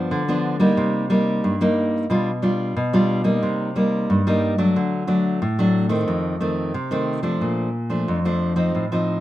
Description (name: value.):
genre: samba.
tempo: 90 BPM.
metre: 4/4.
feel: straight.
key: G minor.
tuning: A4 = 441 Hz.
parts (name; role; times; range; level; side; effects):
nylon-string guitar; solo; 0.0-9.2 s; F2 to F4; -19 LUFS; equal; none.
room: moderate studio reverb, RT60 0.7 s.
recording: none.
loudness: -18 LUFS.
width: side -14 dB against mid.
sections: 0.0-7.4 A section; 7.4-9.2 B section.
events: none.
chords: 0.0 G7; 0.8 Cm7; 2.1 G7/B; 3.4 Cm7; 4.8 D; 6.1 F7; 7.4 Bbmaj7.